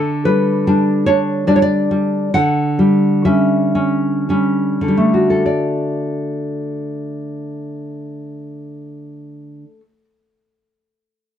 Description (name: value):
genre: romantic piece for solo classical guitar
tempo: 48-76 BPM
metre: 3/4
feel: rubato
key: D major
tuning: A4 = 440 Hz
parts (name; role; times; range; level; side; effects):
- nylon-string guitar; solo; 0.0-10.0 s; D3 to F#5; -15 LUFS; equal; none
room: light reverb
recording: dark, warm production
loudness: -14 LUFS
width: side -9 dB against mid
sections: 0.0-5.5 A section; 5.5-8.6 B section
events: slowing down 0.0-5.5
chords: 0.0 G/D; 2.3 Em13/D; 5.5 D